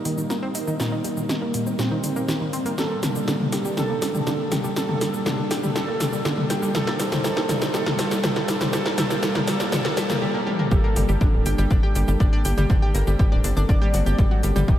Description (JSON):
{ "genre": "melodic techno", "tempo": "121 BPM", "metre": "4/4", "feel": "straight", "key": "G minor", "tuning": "A4 = 445 Hz", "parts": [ { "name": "warm analog pad", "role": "sustained chords", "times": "0.0-14.8 s", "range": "G3 to C5", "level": "-30 LUFS", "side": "right 1 dB", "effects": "chorus, sidechain pumping" }, { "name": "analog pluck", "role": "arpeggios", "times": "0.1-14.8 s", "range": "Bb2 to G5", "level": "-27 LUFS", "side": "equal", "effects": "chorus, sidechain pumping, analog delay" }, { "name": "deep house drum kit", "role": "drums", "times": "0.1-14.8 s", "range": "hi-hat, shaker, snare drum, toms", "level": "-25 LUFS", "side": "left 1 dB", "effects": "overdrive, sidechain pumping on perc, sidechain pumping on hats, sidechain pumping on toms" }, { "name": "analog synth brass", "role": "melody", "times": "1.8-14.8 s", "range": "C4 to D5", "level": "-31 LUFS", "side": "right 2 dB", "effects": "chorus, sidechain pumping, analog delay" }, { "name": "tight sequencer bass", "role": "bass", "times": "10.7-14.8 s", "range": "D1 to G1", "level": "-22 LUFS", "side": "equal", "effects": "sidechain pumping" }, { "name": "electronic kick drum", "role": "drums", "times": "10.7-14.8 s", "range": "none", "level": "-20 LUFS", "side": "equal", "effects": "none" } ], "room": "wet cathedral reverb, RT60 6.3 s", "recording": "dreamy mix soaked in reverb", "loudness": "-20 LUFS", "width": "side -12 dB against mid", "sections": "0.0-10.7 A section; 10.7-14.8 B section", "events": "build-up 0.0-10.7; drum fill 0.0-10.2, 10.5; filter sweep on synth pluck 0.0-10.7; drop 10.7-14.8", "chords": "0.0 Eb; 2.8 Gmadd9; 6.7 Cmadd9; 10.7 Gmadd9", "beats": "0.30 | 0.80 1.29 1.79 2.29 | 2.78 3.28 3.77 4.27 | 4.76 5.26 5.76 6.25 | 6.75 7.24 7.74 8.23 | 8.73 9.23 9.72 10.22 | 10.71 11.21 11.71 12.20 | 12.70 13.19 13.69 14.19 | 14.68" }